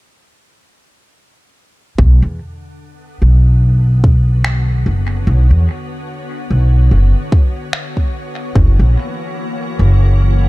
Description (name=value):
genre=ambient dub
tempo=73 BPM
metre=4/4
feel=swing 57% on 16ths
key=B harmonic minor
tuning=A4 = 442 Hz
part: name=soft additive organ-like pad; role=sustained chords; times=2.0-10.5 s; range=D3 to C#5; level=-26 LUFS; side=left 2 dB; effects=ensemble chorus, built-in reverb, vintage 12-bit sampler grit
part: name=upright bass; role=bass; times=2.0-10.5 s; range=F#1 to E2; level=-10 LUFS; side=equal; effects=none
part: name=electronic kick drum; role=drums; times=2.0-8.7 s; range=none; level=-12 LUFS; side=equal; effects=small room ambience
part: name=electronic finger snaps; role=drums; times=4.4-7.9 s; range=none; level=-24 LUFS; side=equal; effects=small room ambience, dub echo
room=digital ambience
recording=none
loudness=-11 LUFS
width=side -20 dB against mid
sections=2.0-10.5 A section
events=fade-in on ambient pad 2.0-10.5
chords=2.0 Bmadd9; 8.6 F#7